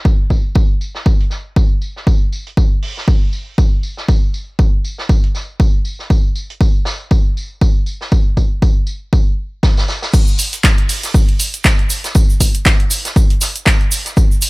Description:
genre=house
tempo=119 BPM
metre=4/4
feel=swing 56% on 16ths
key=none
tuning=none
part: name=electronic kick drum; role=drums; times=0.1-14.3 s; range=none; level=-12 LUFS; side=equal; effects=none
part: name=vintage drum kit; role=drums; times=0.1-14.5 s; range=hi-hat, snare drum, tambourine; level=-27 LUFS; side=right 1 dB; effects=high-pass filter on hats, low-pass filter on hats, high-pass filter on snare, low-pass filter on snare, high-pass filter on perc, low-pass filter on perc, high-pass filter on room, low-pass filter on room
part: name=punchy analog drum machine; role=drums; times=10.1-14.5 s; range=crash cymbal, handclaps, hi-hat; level=-18 LUFS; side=equal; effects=none
part: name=tube shaker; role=percussion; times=10.1-14.5 s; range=none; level=-22 LUFS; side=right 3 dB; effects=none
room=little or no reverb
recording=none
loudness=-12 LUFS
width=side -23 dB against mid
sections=0.0-10.1 A section; 10.1-14.5 B section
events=drop 10.1-14.5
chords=none

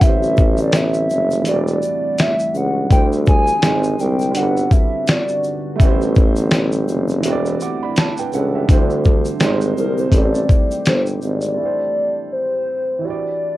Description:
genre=lo-fi hip hop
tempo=83 BPM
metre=4/4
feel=swing 57% on 16ths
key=A dorian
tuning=A4 = 440 Hz
part: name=hollow clarinet-like synth lead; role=melody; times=0.0-13.6 s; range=Bb4 to G#5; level=-20 LUFS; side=equal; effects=chorus, cassette tape
part: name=dark upright piano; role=accompaniment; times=0.0-13.6 s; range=D3 to D6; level=-25 LUFS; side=right 7 dB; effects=cassette tape
part: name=deep dark ambient pad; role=sustained chords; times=0.1-11.6 s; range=D3 to F#5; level=-26 LUFS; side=left 1 dB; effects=chorus, built-in reverb, cassette tape
part: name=warm tuba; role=bass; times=0.0-11.5 s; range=E1 to D2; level=-19 LUFS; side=equal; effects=none
part: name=dusty soul sampler-style drum kit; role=drums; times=0.0-11.6 s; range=finger snaps, hi-hat, kick drum, shaker, snare drum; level=-15 LUFS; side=equal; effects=cassette tape
part: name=egg shaker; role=percussion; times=0.0-11.6 s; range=none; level=-44 LUFS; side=left 10 dB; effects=none
room=light reverb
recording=home recording on cassette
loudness=-15 LUFS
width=side -16 dB against mid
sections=0.0-11.6 A section; 11.6-13.6 B section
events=none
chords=0.0 Am7; 1.5 Em9; 2.9 D9sus4; 3.6 G#maj7; 4.4 Gmaj7; 5.8 Am7; 7.2 Em9; 8.7 D9sus4; 9.4 G#maj7; 10.1 Am7; 13.0 Em9

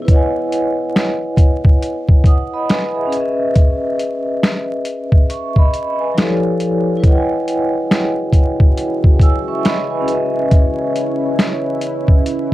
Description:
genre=lo-fi hip hop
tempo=69 BPM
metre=4/4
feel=swing 61% on 16ths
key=E major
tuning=A4 = 440 Hz
part: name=vibraphone with soft mallets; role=accompaniment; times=0.0-12.5 s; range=F3 to E6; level=-18 LUFS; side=equal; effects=low-pass filter
part: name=deep dark ambient pad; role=sustained chords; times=0.0, 7.9-12.5 s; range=C#4 to C#5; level=-25 LUFS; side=right 1 dB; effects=chorus, built-in reverb, low-pass filter
part: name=boom bap sampler-style drum kit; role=drums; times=0.1-12.5 s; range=finger snaps, hi-hat, kick drum, snare drum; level=-12 LUFS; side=equal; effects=vintage 12-bit sampler grit
room=light reverb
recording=dark, warm production, vinyl crackle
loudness=-13 LUFS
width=side -16 dB against mid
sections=0.1-12.5 A section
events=none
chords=0.1 Emaj13; 3.1 C#m9; 6.2 Fmaj13; 7.0 Emaj13; 10.1 C#m9

